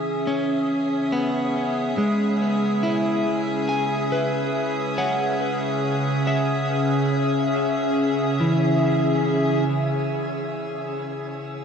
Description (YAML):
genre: ambient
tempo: 70 BPM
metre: 4/4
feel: straight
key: C# minor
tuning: A4 = 440 Hz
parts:
  - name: evolving wavetable pad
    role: sustained chords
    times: 0.0-11.6 s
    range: C#4 to D#6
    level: -24 LUFS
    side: left 1 dB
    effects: chorus, built-in reverb
  - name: electric guitar at the edge of break-up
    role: arpeggios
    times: 0.0-11.6 s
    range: E3 to G#5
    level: -25 LUFS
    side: equal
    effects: ping-pong delay
  - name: organ-like drone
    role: drone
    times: 0.0-11.6 s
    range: C#3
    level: -28 LUFS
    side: right 2 dB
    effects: ensemble chorus, built-in reverb, phaser
  - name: drifting glass-harmonics texture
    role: texture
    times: 0.0-9.7 s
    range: G#5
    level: -36 LUFS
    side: left 1 dB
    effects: chorus, built-in reverb
room: wet shimmer reverb, RT60 8.2 s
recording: dark, warm production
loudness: -20 LUFS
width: side -6 dB against mid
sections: 0.0-9.7 A section; 9.7-11.6 A section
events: fade-in on synth drone 0.0-9.7; fade-in on synth texture 0.0-9.7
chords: 0.0 C#m9; 9.7 C#madd9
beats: 0.26 1.12 1.97 | 2.83 3.69 4.54 5.40 | 6.26 7.12 7.97 8.83 | 9.69 10.54 11.40